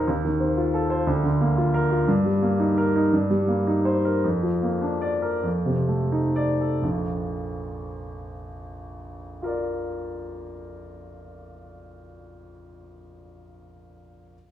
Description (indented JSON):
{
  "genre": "classical, romantic character piece for solo piano",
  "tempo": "41-61 BPM (dotted quarters)",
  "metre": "6/8",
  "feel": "rubato",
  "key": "Bb major",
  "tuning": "A4 = 440 Hz",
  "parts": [
    { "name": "warm baby grand piano", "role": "solo", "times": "0.0-14.4 s", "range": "Bb1 to D5", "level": "-22 LUFS", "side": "equal", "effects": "none" }
  ],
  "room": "wet large studio reverb, RT60 1.2 s",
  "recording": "heard from further back in the room",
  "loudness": "-21 LUFS",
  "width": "side -11 dB against mid",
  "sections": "0.0-6.8 A section; 6.8-12.1 B section",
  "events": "slowing down 1.1-6.8",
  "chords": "0.1 F7/Eb; 1.1 Bb/D; 2.1 Eb/G; 3.1 Cm7/G; 4.2 Bb/F; 5.4 F6; 6.8 Bb"
}